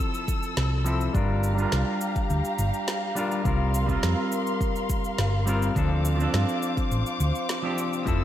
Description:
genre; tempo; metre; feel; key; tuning
sunset chillout; 104 BPM; 4/4; straight; unclear; A4 = 440 Hz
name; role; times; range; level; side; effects
clean electric guitar; accompaniment; 0.0-8.2 s; F3 to Bb4; -28 LUFS; moving between left 3 dB and right 4 dB; auto-pan, low-pass filter, ping-pong delay
muted studio string section; sustained chords; 0.0-8.2 s; G4 to E6; -31 LUFS; left 2 dB; none
electronic cabasa and snare drum; drums; 0.1-8.2 s; none; -34 LUFS; equal; studio reverb, slapback echo
electronic kick drum; drums; 0.3-8.2 s; none; -28 LUFS; equal; studio reverb
hollow-body short-scale fingered electric bass; bass; 0.6-8.2 s; F1 to G2; -24 LUFS; equal; none
room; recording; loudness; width
moderate concert hall reverb, RT60 1.9 s; big arena sound; -23 LUFS; side -12 dB against mid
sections
0.0-8.2 A section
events
filter sweep on clean electric guitar 0.0-8.2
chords
0.0 Fmaj7; 1.1 Gm7; 3.5 C7sus4; 5.8 Dm7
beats
0.00 0.57 | 1.15 1.73 2.30 2.88 | 3.46 4.03 4.61 5.19 | 5.76 6.34 6.92 7.50 | 8.07

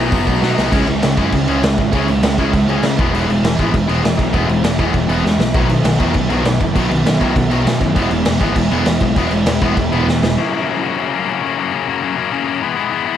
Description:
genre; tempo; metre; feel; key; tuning
punk rock; 199 BPM; 4/4; straight; F# mixolydian; A4 = 438 Hz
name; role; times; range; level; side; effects
distorted electric guitar; riff; 0.0-13.2 s; F#2 to E4; -19 LUFS; left 7 dB; overdrive
sludgy distorted guitar; riff; 0.0-10.4 s; B2 to D#4; -21 LUFS; right 8 dB; overdrive
sludgy distorted guitar; riff; 0.0-10.4 s; E2 to C#4; -22 LUFS; right 1 dB; overdrive
growling picked electric bass; bass; 0.0-10.4 s; E1 to C#3; -21 LUFS; equal; overdrive
raw garage drum kit; drums; 0.1-10.3 s; crash cymbal, hi-hat, kick drum, snare drum; -18 LUFS; equal; none
room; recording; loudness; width
light reverb; vinyl crackle; -13 LUFS; side -10 dB against mid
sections
0.7-10.4 A section; 10.4-13.2 B section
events
drum fill 0.4-0.7, 5.2-5.5, 10.1-10.4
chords
0.0 B; 0.7 C#5; 3.0 E; 5.5 B; 8.0 E; 10.4 F#; 12.6 E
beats
0.12 0.42 | 0.72 1.03 1.33 1.63 | 1.93 2.23 2.53 2.84 | 3.14 3.44 3.74 4.04 | 4.34 4.64 4.95 5.25 | 5.55 5.85 6.15 6.45 | 6.76 7.06 7.36 7.66 | 7.96 8.27 8.57 8.87 | 9.17 9.47 9.77 10.07 | 10.38 10.68 10.98 11.28 | 11.58 11.88 12.18 12.48 | 12.78 13.08

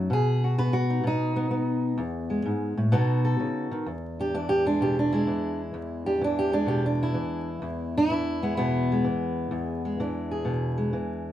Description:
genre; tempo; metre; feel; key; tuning
acoustic country blues, solo or duo; 127 BPM; 4/4; swing 68% on 8ths; E mixolydian; A4 = 441 Hz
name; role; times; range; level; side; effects
fingerpicked steel-string acoustic guitar; solo; 0.0-11.3 s; E2 to B4; -24 LUFS; equal; none
room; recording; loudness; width
wet studio ambience, RT60 0.5 s; band playing live in one room, vinyl crackle; -24 LUFS; side -12 dB against mid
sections
0.0-3.9 A section; 3.9-11.3 B section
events
steel-string acoustic guitar solo 0.0-3.9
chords
0.0 B; 2.0 E; 2.9 B7; 3.9 E7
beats
| 0.11 0.58 1.05 1.52 | 1.99 2.46 2.93 3.40 | 3.87 4.34 4.81 5.28 | 5.75 6.22 6.69 7.16 | 7.63 8.10 8.58 9.05 | 9.52 9.99 10.46 10.93

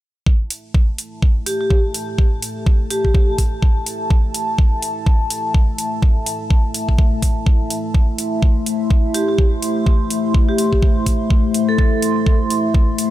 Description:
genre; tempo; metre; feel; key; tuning
bass house; 125 BPM; 4/4; swing 59% on 16ths; A minor; A4 = 440 Hz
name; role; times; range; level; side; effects
dark analog pad; sustained chords; 1.1-13.1 s; A3 to C6; -21 LUFS; left 1 dB; chorus, phaser, sidechain pumping
electronic kick drum; drums; 0.3-12.9 s; none; -14 LUFS; equal; none
electronic hi-hat; drums; 0.5-13.1 s; none; -24 LUFS; right 1 dB; none
vibraphone with medium hard mallets; melody; 1.5-3.3, 9.1-12.3 s; G4 to A4; -24 LUFS; equal; analog delay
room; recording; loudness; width
light reverb, digital ambience; none; -15 LUFS; side -14 dB against mid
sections
0.3-13.1 A section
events
none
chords
0.3 A5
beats
| 0.27 0.74 1.23 1.71 | 2.19 2.67 3.15 3.62 | 4.11 4.58 5.07 5.54 | 6.03 6.50 6.99 7.46 | 7.95 8.43 8.90 9.38 | 9.87 10.35 10.82 11.30 | 11.79 12.27 12.74

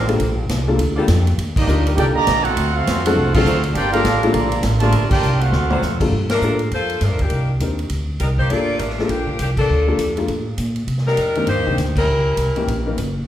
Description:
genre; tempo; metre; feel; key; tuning
jazz, big band swing; 202 BPM; 4/4; swing 61% on 8ths; G minor; A4 = 438 Hz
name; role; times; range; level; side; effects
clear trumpet section; melody; 0.0-6.0 s; Bb3 to Bb5; -21 LUFS; right 3 dB; none
clear trombone section; second line; 0.0-6.0 s; D3 to G4; -24 LUFS; right 4 dB; none
warm saxophone section; sustained chords; 0.0-5.8 s; F#3 to C5; -29 LUFS; left 1 dB; none
upright bass; bass; 0.0-13.3 s; F#1 to C3; -20 LUFS; equal; none
clear baby grand piano; accompaniment; 0.1-13.0 s; Eb3 to Bb4; -22 LUFS; left 2 dB; none
swinging big-band drum kit; drums; 0.1-13.1 s; crash cymbal, hi-hat, kick drum, ride cymbal, snare drum, toms; -25 LUFS; equal; none
clear saxophone section; melody; 6.3-12.8 s; Eb3 to D5; -21 LUFS; left 1 dB; none
room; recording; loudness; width
wet recital hall reverb, RT60 1.3 s; heard from further back in the room; -16 LUFS; side -12 dB against mid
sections
0.0-6.1 A section; 6.1-13.3 B section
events
band accent 1.5, 3.3, 5.1, 6.3, 9.5, 11.9; drum fill 5.5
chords
0.0 Gm9; 1.4 Ebmaj7; 2.6 D7#9; 3.8 Gm9; 5.5 D7#9; 6.1 Gm9; 7.3 Cm9; 8.5 Gm9; 10.9 Cm9; 12.1 C#dim7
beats
| 0.19 0.49 0.79 1.08 | 1.38 1.68 1.97 2.27 | 2.57 2.86 3.16 3.46 | 3.75 4.05 4.34 4.64 | 4.94 5.23 5.53 5.83 | 6.12 6.42 6.72 7.01 | 7.31 7.61 7.91 8.21 | 8.50 8.80 9.10 9.40 | 9.69 9.99 10.29 10.59 | 10.88 11.18 11.48 11.78 | 12.07 12.37 12.67 12.97

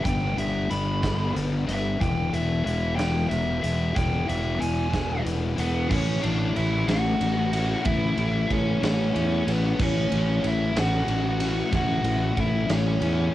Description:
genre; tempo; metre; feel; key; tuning
quiet-loud alternative rock; 62 BPM (dotted quarters); 6/8; straight; A major; A4 = 441 Hz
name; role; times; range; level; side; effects
biting lead guitar; melody; 0.0-13.3 s; B3 to B5; -29 LUFS; right 1 dB; overdrive, cassette tape
sludgy distorted guitar; riff; 0.0-13.3 s; G2 to E4; -28 LUFS; left 5 dB; overdrive
fuzz fingered electric bass; bass; 0.0-13.3 s; E1 to E2; -26 LUFS; right 1 dB; overdrive
big rock drum kit; drums; 0.1-13.2 s; crash cymbal, hi-hat, kick drum, ride cymbal, snare drum; -30 LUFS; right 1 dB; cassette tape
room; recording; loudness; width
studio reverb; home recording on cassette; -22 LUFS; side -14 dB against mid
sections
0.0-5.9 A section; 5.9-13.3 B section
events
lead electric guitar solo 0.0-5.9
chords
0.0 G; 2.0 E; 5.9 A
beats
| 0.04 1.02 | 2.00 2.98 | 3.96 4.93 | 5.91 6.88 | 7.85 8.82 | 9.79 10.76 | 11.73 12.70

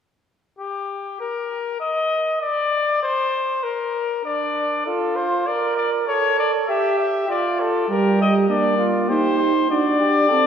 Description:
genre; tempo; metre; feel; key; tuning
classical, imitative canzona for brass ensemble; 99 BPM; 3/4; straight; unclear; A4 = 443 Hz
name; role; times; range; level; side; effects
warm trumpet; melody; 0.6-10.5 s; G4 to E5; -21 LUFS; left 4 dB; none
dark trumpet; second line; 4.2-10.5 s; D4 to Bb4; -22 LUFS; right 4 dB; none
dark euphonium; accompaniment; 7.9-10.5 s; G3 to Eb4; -19 LUFS; right 3 dB; none
room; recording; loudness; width
wet church reverb, RT60 2.6 s; recorded in a church or concert hall; -18 LUFS; side -8 dB against mid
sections
0.6-10.5 A section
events
none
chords
0.6 N.C.; 4.3 Dm; 5.5 Bb; 6.1 A; 7.3 Dm/F; 7.9 Gm; 9.1 Cm/Eb; 9.7 D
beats
| 0.59 1.20 1.81 | 2.42 3.03 3.64 | 4.25 4.86 5.47 | 6.07 6.68 7.28 | 7.89 8.50 9.10 | 9.70 10.31

